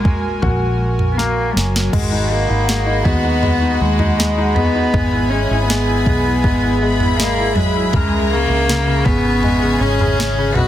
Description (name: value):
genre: pop ballad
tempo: 80 BPM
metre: 4/4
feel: straight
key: G# minor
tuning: A4 = 440 Hz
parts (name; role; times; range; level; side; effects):
- warm cello; melody; 0.0-10.7 s; F#3 to F#4; -19 LUFS; equal; none
- bright concert grand piano; accompaniment; 0.0-10.7 s; B2 to F#4; -23 LUFS; left 5 dB; none
- airy breathy pad; sustained chords; 0.0-10.7 s; F#4 to C#6; -24 LUFS; right 1 dB; chorus
- vintage muted fingered electric bass; bass; 0.0-10.7 s; F#1 to D#2; -20 LUFS; equal; none
- smooth R&B drum kit; drums; 0.1-10.7 s; crash cymbal, kick drum, snare drum, toms; -20 LUFS; right 1 dB; overdrive
- warm studio violin section; second line; 1.9-10.7 s; F#4 to B5; -24 LUFS; equal; none
room: little or no reverb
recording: dense, heavily limited modern master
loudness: -14 LUFS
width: side -12 dB against mid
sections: 0.0-1.9 A section; 1.9-10.7 B section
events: drum fill 1.2-1.9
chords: 0.0 F#add9; 1.9 G#m; 4.9 E/G#; 7.9 C#m